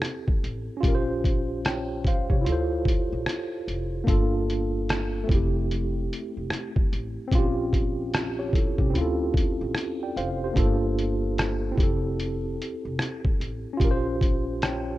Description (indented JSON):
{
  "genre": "lo-fi hip hop",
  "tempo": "74 BPM",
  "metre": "4/4",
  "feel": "swing 64% on 16ths",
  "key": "F major",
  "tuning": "A4 = 440 Hz",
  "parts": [
    { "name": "tine electric piano", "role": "accompaniment", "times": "0.0-15.0 s", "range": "A3 to G5", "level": "-28 LUFS", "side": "right 1 dB", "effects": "overdrive, fast stereo tremolo, cassette tape, low-pass filter" },
    { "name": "lo-fi sampler-style drum kit", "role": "drums", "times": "0.0-14.9 s", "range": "hi-hat, kick drum, rim click", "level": "-25 LUFS", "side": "equal", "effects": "vintage 12-bit sampler grit" },
    { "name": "upright bass", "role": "bass", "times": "0.4-15.0 s", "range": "F1 to D2", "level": "-30 LUFS", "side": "equal", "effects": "none" }
  ],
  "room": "light reverb, digital ambience",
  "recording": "rough home demo mix, cassette tape",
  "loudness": "-23 LUFS",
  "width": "side -16 dB against mid",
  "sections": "0.0-15.0 A section",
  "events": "none",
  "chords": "0.0 Fmaj9 (rootless); 0.8 Bbm6; 2.5 Dm7; 4.1 Gm7; 5.3 Fmaj9; 7.3 Bbm6; 8.9 Dm7; 10.6 Gm7; 11.8 Fmaj9; 13.8 Bbm6",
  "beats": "0.02 | 0.83 1.64 2.45 3.26 | 4.07 4.88 5.70 6.51 | 7.32 8.13 8.94 9.75 | 10.56 11.37 12.18 12.99 | 13.80 14.61"
}